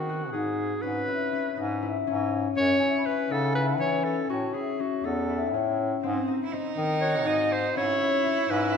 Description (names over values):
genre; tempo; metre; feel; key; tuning
contemporary instrumental, chamber music in an uneven meter; 242 BPM (eighths); 7/8; straight; C# minor; A4 = 440 Hz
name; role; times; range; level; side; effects
breathy clarinet; melody; 0.0-8.8 s; F#4 to D#5; -28 LUFS; right 2 dB; none
concert harp; arpeggios; 0.0-8.8 s; B#3 to F#4; -29 LUFS; left 8 dB; none
clear bass clarinet; bass; 0.0-8.8 s; E2 to E3; -30 LUFS; equal; none
worn celesta; texture; 0.0-0.1, 2.8-4.1 s; F#5 to B5; -39 LUFS; equal; none
clear cello; second line; 6.0-8.8 s; B#3 to E4; -29 LUFS; right 6 dB; none
room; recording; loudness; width
wet recital hall reverb, RT60 1.5 s; none; -24 LUFS; side -6 dB against mid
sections
0.0-8.8 A section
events
none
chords
0.0 G#7; 0.8 C#m7/G#; 2.6 F#5; 4.3 A; 6.0 G#7; 7.8 C#m7/G#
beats
0.09 0.33 0.58 | 0.83 1.07 1.32 1.57 1.82 2.06 2.31 | 2.56 2.81 3.06 3.30 3.55 3.80 4.04 | 4.29 4.54 4.79 5.04 5.28 5.53 5.78 | 6.03 6.27 6.52 6.77 7.01 7.26 7.51 | 7.76 8.01 8.25 8.50 8.75